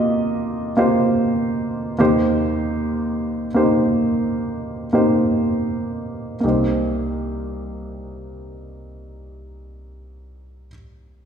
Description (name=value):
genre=pop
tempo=48-64 BPM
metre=4/4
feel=straight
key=C minor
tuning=A4 = 439 Hz
part: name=dark baby grand piano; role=accompaniment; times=0.0-11.3 s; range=C2 to Eb5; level=-19 LUFS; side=equal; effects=slapback echo
room=moderate lush hall reverb, RT60 2.4 s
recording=live gig heard through the venue's PA, recital hall reverb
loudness=-18 LUFS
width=side -8 dB against mid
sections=0.0-6.4 A section; 6.4-11.3 B section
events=slowing down 0.0-6.4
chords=0.0 Ebadd9; 2.0 Cm7/Eb; 6.4 Cm7